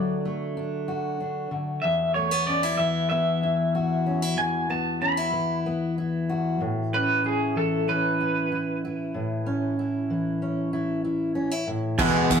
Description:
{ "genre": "indie folk with a building arrangement", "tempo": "94 BPM", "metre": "4/4", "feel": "straight", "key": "unclear", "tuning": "A4 = 442 Hz", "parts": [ { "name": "electric guitar through a small old amp", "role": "melody", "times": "0.0-12.4 s", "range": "G#4 to B5", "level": "-25 LUFS", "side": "right 1 dB", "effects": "tremolo" }, { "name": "fingerpicked steel-string acoustic guitar", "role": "accompaniment", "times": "0.0-12.4 s", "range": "E2 to F#4", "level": "-26 LUFS", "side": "left 1 dB", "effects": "none" }, { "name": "warm cello", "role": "second line", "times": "12.0-12.4 s", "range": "B2", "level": "-26 LUFS", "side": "left 2 dB", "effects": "none" }, { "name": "bright upright piano", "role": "accompaniment", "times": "12.0-12.4 s", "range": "E2 to E5", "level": "-26 LUFS", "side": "right 1 dB", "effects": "none" }, { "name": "picked twelve-string acoustic guitar", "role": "accompaniment", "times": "12.0-12.4 s", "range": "E2 to E4", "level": "-29 LUFS", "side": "left 1 dB", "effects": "none" }, { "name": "bowl-back mandolin", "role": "arpeggios", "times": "12.0-12.4 s", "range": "G#3 to B3", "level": "-27 LUFS", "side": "right 7 dB", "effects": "none" }, { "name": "picked electric bass", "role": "bass", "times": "12.0-12.4 s", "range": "E2", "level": "-24 LUFS", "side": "right 1 dB", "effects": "none" }, { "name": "unplugged drum kit", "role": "drums", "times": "12.0-12.4 s", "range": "crash cymbal, hi-hat, kick drum", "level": "-26 LUFS", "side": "right 2 dB", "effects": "none" }, { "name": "tambourine", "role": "percussion", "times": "12.3-12.4 s", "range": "none", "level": "-31 LUFS", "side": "left 4 dB", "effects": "none" } ], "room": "wet studio reverb, RT60 0.7 s", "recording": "rough rehearsal-room recording", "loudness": "-23 LUFS", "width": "side -6 dB against mid", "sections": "0.0-12.0 A section", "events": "none", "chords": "0.0 D; 1.8 Esus2; 6.6 Aadd9" }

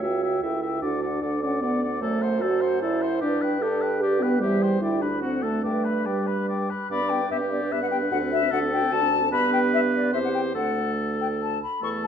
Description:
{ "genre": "quick classical-period movement for wind quintet", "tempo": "149 BPM", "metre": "3/4", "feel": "rubato", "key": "G major", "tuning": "A4 = 441 Hz", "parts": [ { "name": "silver concert flute", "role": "melody", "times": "0.0-12.1 s", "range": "D5 to C#6", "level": "-29 LUFS", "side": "left 7 dB", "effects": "none" }, { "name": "warm oboe", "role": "second line", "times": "0.0-12.1 s", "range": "F#4 to E5", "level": "-30 LUFS", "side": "left 2 dB", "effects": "none" }, { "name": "dark French horn", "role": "accompaniment", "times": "0.0-12.1 s", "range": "G3 to A4", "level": "-26 LUFS", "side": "right 1 dB", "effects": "none" }, { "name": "dark clarinet", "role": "accompaniment", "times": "0.0-12.1 s", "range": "F#4 to D5", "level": "-32 LUFS", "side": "right 8 dB", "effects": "none" }, { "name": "dark bassoon", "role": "bass", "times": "0.0-12.1 s", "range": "C#2 to G2", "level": "-30 LUFS", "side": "right 3 dB", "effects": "none" } ], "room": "wet recital hall reverb, RT60 1.3 s", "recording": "dark, warm production", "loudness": "-22 LUFS", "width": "side -8 dB against mid", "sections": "0.0-6.9 A section; 6.9-12.1 B section", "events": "none", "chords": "0.0 A7/C#; 0.8 D; 2.0 D7/F#; 3.2 G; 4.4 C/E; 4.8 G/D; 5.2 D7; 5.6 G; 8.1 D7; 9.3 G; 10.1 C/E; 10.5 D" }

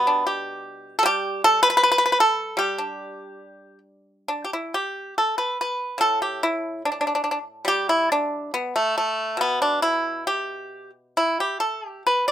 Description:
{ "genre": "chinese traditional, Chinese solo plucked strings", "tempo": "65-80 BPM", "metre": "2/4", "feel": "rubato", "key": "G gong mode", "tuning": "A4 = 440 Hz", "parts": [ { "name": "pipa", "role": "solo", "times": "0.0-12.3 s", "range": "A2 to D5", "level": "-20 LUFS", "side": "equal", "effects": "none" } ], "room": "little or no reverb", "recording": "rough home demo mix", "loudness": "-20 LUFS", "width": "side -11 dB against mid", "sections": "0.0-4.3 A section; 4.3-12.3 B section", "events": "none", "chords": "none" }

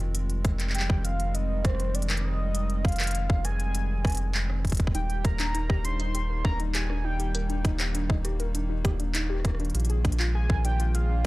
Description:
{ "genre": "IDM", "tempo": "100 BPM", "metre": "4/4", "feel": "straight", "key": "F dorian", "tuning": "A4 = 440 Hz", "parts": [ { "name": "hollow soft pad", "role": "sustained chords", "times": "0.0-11.3 s", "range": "Eb3 to F4", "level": "-36 LUFS", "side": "right 1 dB", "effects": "chorus" }, { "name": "round analog bass", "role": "bass", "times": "0.0-11.3 s", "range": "Eb1 to Bb1", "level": "-28 LUFS", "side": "equal", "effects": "tube saturation" }, { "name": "organic electronic drum kit", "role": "drums", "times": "0.0-11.1 s", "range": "handclaps, hi-hat, rim click", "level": "-33 LUFS", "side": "equal", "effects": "overdrive" }, { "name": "electronic kick drum", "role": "drums", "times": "0.4-10.6 s", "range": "none", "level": "-26 LUFS", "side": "equal", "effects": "overdrive" }, { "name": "warm velvety synth lead", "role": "melody", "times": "0.7-11.3 s", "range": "C5 to C6", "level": "-35 LUFS", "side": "equal", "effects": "chorus, tremolo, analog delay" }, { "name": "warbly dusty pluck", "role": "arpeggios", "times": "4.9-11.2 s", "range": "D4 to Bb4", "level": "-36 LUFS", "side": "left 2 dB", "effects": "chorus, analog delay" } ], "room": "little or no reverb", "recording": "dry, gritty hardware recording", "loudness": "-25 LUFS", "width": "side -19 dB against mid", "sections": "0.0-11.3 A section", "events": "none", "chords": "0.0 Fm7; 4.9 Ebmaj7; 9.7 Bb7" }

